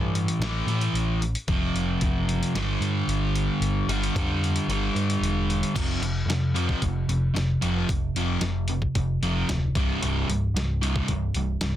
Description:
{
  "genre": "quiet-loud alternative rock",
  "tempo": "112 BPM",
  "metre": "4/4",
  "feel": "straight",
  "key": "unclear",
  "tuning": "A4 = 444 Hz",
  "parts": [
    { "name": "crunchy overdriven guitar", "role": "riff", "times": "0.0-11.8 s", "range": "C2 to A3", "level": "-26 LUFS", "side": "equal", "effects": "none" },
    { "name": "picked electric bass", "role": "bass", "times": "0.0-11.8 s", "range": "C1 to A2", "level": "-27 LUFS", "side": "equal", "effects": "none" },
    { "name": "boom bap sampler-style drum kit", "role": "drums", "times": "0.2-11.7 s", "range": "crash cymbal, hi-hat, kick drum, snare drum", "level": "-29 LUFS", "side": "equal", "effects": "none" }
  ],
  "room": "light reverb",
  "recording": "dense, heavily limited modern master",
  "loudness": "-23 LUFS",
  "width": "side -12 dB against mid",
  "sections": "0.0-5.8 A section; 5.8-11.8 B section",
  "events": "half time 0.0-5.8; kick and snare drop out 4.7-5.8",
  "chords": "0.0 A5; 1.5 F5; 2.6 G5; 5.8 F5; 9.8 C5",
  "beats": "0.42 0.96 | 1.49 2.03 2.56 3.10 | 3.63 4.16 4.70 5.23 | 5.76 6.30 6.83 7.37 | 7.90 8.43 8.96 9.50 | 10.03 10.56 11.09 11.62"
}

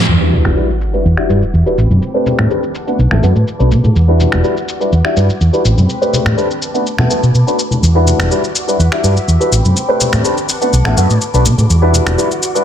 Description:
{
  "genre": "filtered disco house",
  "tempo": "124 BPM",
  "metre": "4/4",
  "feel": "straight",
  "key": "E minor",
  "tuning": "A4 = 439 Hz",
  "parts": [
    { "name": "rich symphonic string section", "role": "sustained chords", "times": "0.0-12.6 s", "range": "C4 to D6", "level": "-26 LUFS", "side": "left 1 dB", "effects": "vintage 12-bit sampler grit, low-pass filter" },
    { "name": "hollow-body short-scale fingered electric bass", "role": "bass", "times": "0.0-12.1 s", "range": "E1 to B2", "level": "-11 LUFS", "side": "equal", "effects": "low-pass filter" },
    { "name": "electronic cabasa and finger snaps", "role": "drums", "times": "0.1-12.6 s", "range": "none", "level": "-20 LUFS", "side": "equal", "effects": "low-pass filter on hats, small room ambience, low-pass filter on perc, low-pass filter on snare" },
    { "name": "tambourine and congas", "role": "percussion", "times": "0.1-12.6 s", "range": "none", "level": "-22 LUFS", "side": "left 2 dB", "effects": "low-pass filter on perc" },
    { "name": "sub drop", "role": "sound effects", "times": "0.1-2.0 s", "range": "none", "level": "-19 LUFS", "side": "equal", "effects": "none" },
    { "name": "bright baby grand piano", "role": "accompaniment", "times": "0.2-12.6 s", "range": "G3 to E5", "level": "-16 LUFS", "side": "left 1 dB", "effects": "phaser, low-pass filter" },
    { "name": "muted trumpet section", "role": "melody", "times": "1.1-11.2 s", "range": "B4 to F#5", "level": "-34 LUFS", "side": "left 1 dB", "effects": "none" }
  ],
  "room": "light reverb, small room ambience",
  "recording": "dense, heavily limited modern master",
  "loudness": "-10 LUFS",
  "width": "side -9 dB against mid",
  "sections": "0.1-12.6 A section",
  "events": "band accent 0.0; impact 0.1-2.0; filter sweep on drum 0.1-12.6; filter sweep 0.1-12.6",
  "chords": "0.1 Em9; 1.8 Am11; 2.7 Bm7; 4.0 Em9; 5.6 Am11; 6.6 Bm7; 7.8 Em9; 9.5 Am11; 10.5 Bm7; 11.7 Em9",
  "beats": "| 0.09 0.57 1.05 1.54 | 2.02 2.50 2.99 3.47 | 3.96 4.44 4.92 5.41 | 5.89 6.38 6.86 7.34 | 7.83 8.31 8.79 9.28 | 9.76 10.25 10.73 11.21 | 11.70 12.18"
}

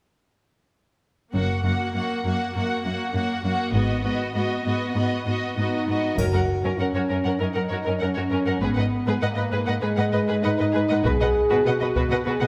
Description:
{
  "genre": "cinematic, epic orchestral film score",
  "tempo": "99 BPM",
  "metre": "4/4",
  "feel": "straight",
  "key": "unclear",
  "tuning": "A4 = 442 Hz",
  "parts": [
    { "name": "rich symphonic violin section", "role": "melody", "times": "1.3-12.5 s", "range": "A#4 to F#5", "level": "-33 LUFS", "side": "equal", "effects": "none" },
    { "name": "rich symphonic violin section", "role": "second line", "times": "1.3-12.5 s", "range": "C#4 to D#5", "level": "-34 LUFS", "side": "equal", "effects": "none" },
    { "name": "rich symphonic viola section", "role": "accompaniment", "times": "1.3-12.5 s", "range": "A#3 to B4", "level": "-32 LUFS", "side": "equal", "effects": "none" },
    { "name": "rich symphonic cello section", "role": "bass", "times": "1.3-12.5 s", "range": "F#2 to B2", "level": "-29 LUFS", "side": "equal", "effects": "none" },
    { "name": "rich symphonic double bass section", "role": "bass", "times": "1.3-11.2 s", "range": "F#1 to B1", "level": "-30 LUFS", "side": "equal", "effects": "none" },
    { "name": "warm French horn section", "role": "sustained chords", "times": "5.6-12.5 s", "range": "G#3 to G#4", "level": "-27 LUFS", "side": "equal", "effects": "none" },
    { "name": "taiko ensemble", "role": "drums", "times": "6.2-7.4, 11.0-12.2 s", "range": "none", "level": "-34 LUFS", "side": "equal", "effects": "none" },
    { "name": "triangle", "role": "percussion", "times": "6.2-7.4 s", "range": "none", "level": "-45 LUFS", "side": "equal", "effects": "none" }
  ],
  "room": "wet scoring stage reverb, RT60 1.7 s",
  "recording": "none",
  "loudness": "-24 LUFS",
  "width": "mono",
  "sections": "1.3-6.2 A section; 6.2-12.5 B section",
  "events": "none",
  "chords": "1.3 F#; 3.7 G#m7; 6.2 F#; 8.6 G#m; 11.1 B",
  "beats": "| 1.34 1.94 2.54 3.14 | 3.74 4.34 4.95 5.56 | 6.18 6.79 7.40 8.00 | 8.61 9.22 9.82 10.44 | 11.05 11.66 12.26"
}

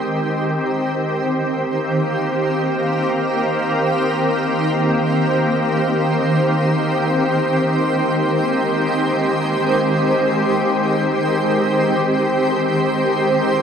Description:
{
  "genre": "ambient",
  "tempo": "free time",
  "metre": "none",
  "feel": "none",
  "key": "Ab major",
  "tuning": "A4 = 440 Hz",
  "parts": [
    { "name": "shimmering ambient pad", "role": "solo", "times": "0.0-13.6 s", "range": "Eb3 to C5", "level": "-16 LUFS", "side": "equal", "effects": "chorus, built-in reverb, analog delay" }
  ],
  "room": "wet huge ambient reverb, RT60 8.6 s",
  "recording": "dreamy mix soaked in reverb",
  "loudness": "-16 LUFS",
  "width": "side -7 dB against mid",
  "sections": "0.0-13.6 A section",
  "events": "none",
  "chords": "0.0 Cm7; 7.1 Abmaj7",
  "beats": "free time"
}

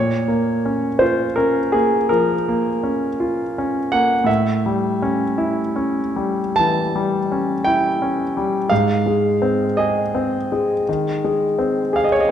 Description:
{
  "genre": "classical, romantic nocturne for solo piano",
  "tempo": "48-58 BPM (dotted quarters)",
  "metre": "12/8",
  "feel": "rubato",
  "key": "unclear",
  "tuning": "A4 = 439 Hz",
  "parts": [
    { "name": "clear grand piano", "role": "solo", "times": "0.0-12.3 s", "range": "Ab2 to A5", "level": "-17 LUFS", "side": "equal", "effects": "none" }
  ],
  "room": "wet recital hall reverb, RT60 1.5 s",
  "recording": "none",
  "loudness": "-17 LUFS",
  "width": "side -9 dB against mid",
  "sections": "0.0-12.3 A section",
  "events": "none",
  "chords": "0.0 Bbm; 4.3 A7; 8.7 Ab",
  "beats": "1.01 2.11 3.21 | 4.28 5.37 6.56 7.65 | 8.71 9.78 10.88 11.94"
}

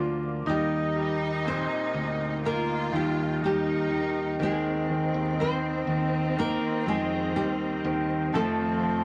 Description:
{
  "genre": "pop ballad",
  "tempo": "61 BPM",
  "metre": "4/4",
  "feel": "straight",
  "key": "Eb major",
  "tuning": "A4 = 441 Hz",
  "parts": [
    { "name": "nylon-string guitar", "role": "melody", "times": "0.0-9.0 s", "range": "F3 to C5", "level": "-33 LUFS", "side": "equal", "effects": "none" },
    { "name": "bright concert grand piano", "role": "accompaniment", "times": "0.0-9.0 s", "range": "Bb2 to F4", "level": "-32 LUFS", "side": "equal", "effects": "none" },
    { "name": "sweeping resonant pad", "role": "sustained chords", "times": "0.0-9.0 s", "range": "Bb4 to F6", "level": "-39 LUFS", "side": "equal", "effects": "chorus" },
    { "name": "picked steel-string acoustic guitar", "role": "arpeggios", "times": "0.0-9.0 s", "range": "F2 to Ab4", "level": "-43 LUFS", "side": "equal", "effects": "none" },
    { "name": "modern bright fingered electric bass", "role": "bass", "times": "0.0-9.0 s", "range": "D2 to F2", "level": "-34 LUFS", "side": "equal", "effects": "none" },
    { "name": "clear studio cello section", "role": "second line", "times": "0.5-9.0 s", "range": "C4 to F4", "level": "-36 LUFS", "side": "equal", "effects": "none" }
  ],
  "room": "wet studio ambience, RT60 0.5 s",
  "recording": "vinyl crackle",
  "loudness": "-27 LUFS",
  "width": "mono",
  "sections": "0.0-9.0 A section",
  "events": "none",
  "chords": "0.5 Eb; 4.4 Abadd9/Eb; 8.3 F7",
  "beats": "| 0.46 1.45 2.43 3.42 | 4.40 5.38 6.37 7.35 | 8.33"
}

